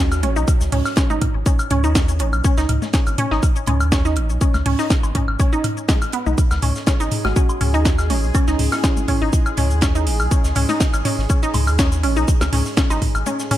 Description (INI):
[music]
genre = minimal techno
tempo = 122 BPM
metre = 4/4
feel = swing 53% on 16ths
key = C# minor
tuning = A4 = 441 Hz
[part]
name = saturated sub bass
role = bass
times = 0.0-13.2 s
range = G#1 to D#2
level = -20 LUFS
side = equal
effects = tube saturation, sidechain pumping
[part]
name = downlifter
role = sound effects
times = 0.1-2.4 s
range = none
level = -39 LUFS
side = right 2 dB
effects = none
[part]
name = house drum kit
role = drums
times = 0.1-13.6 s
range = cabasa, hi-hat, snare drum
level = -25 LUFS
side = equal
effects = none
[part]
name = modern studio drum kit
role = drums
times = 0.1-13.6 s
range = hi-hat, snare drum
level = -36 LUFS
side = right 2 dB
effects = none
[part]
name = electronic woodblock, congas and toms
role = percussion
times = 0.1-13.6 s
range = none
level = -25 LUFS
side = left 2 dB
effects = ping-pong delay
[part]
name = resonant blip pluck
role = riff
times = 0.2-13.6 s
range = G#3 to D#4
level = -23 LUFS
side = right 1 dB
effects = chorus, cassette tape, sidechain pumping, ping-pong delay
[part]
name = electronic kick drum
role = drums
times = 0.5-13.1 s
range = none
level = -18 LUFS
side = equal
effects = none
[part]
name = bubbling stepped-filter texture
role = texture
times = 6.8-13.6 s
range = G#3 to G#4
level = -31 LUFS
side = equal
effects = chorus, built-in reverb, sidechain pumping
[part]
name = kalimba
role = melody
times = 7.2-9.2 s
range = C#4 to F#4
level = -29 LUFS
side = right 1 dB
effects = ping-pong delay
[sound]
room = light reverb, digital ambience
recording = none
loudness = -16 LUFS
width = side -13 dB against mid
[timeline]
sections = 0.0-13.6 A section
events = none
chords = 0.0 C#5